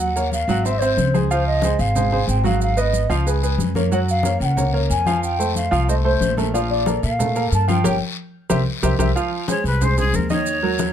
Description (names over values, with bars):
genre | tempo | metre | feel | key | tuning
latin, salsa | 183 BPM | 4/4 | straight | F minor | A4 = 438 Hz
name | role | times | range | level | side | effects
mellow hollow bansuri | melody | 0.0-9.1 s | C5 to A5 | -22 LUFS | equal | none
bright baby grand piano | accompaniment | 0.0-10.9 s | Eb3 to Gb5 | -23 LUFS | right 3 dB | none
upright bass | bass | 0.0-10.9 s | G1 to Bb2 | -21 LUFS | left 1 dB | none
guiro | percussion | 0.0-10.9 s | none | -34 LUFS | left 8 dB | none
maracas | percussion | 0.0-10.9 s | none | -33 LUFS | right 6 dB | none
congas | percussion | 0.2-10.9 s | none | -26 LUFS | left 4 dB | none
breathy bright jazz flute | melody | 9.5-10.9 s | Ab4 to Db5 | -23 LUFS | left 2 dB | none
room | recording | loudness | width
little or no reverb | close, detailed microphones | -17 LUFS | side -9 dB against mid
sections
0.0-9.2 A section; 9.2-10.9 B section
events
band accent 7.8-9.2; flute solo 9.2-10.9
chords
0.0 Ebm9; 0.6 Abaug; 1.3 Dbmaj9; 2.6 Abm7; 3.3 Db5; 3.9 Gbadd9; 5.2 Fadd9; 6.5 Bbmaj7; 7.8 Gdim; 8.5 C7; 9.2 Fm7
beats
0.32 0.65 0.97 | 1.30 1.63 1.95 2.28 | 2.61 2.94 3.26 3.59 | 3.92 4.25 4.57 4.90 | 5.23 5.56 5.88 6.21 | 6.54 6.87 7.19 7.52 | 7.85 8.18 8.50 8.83 | 9.16 9.48 9.81 10.14 | 10.46 10.79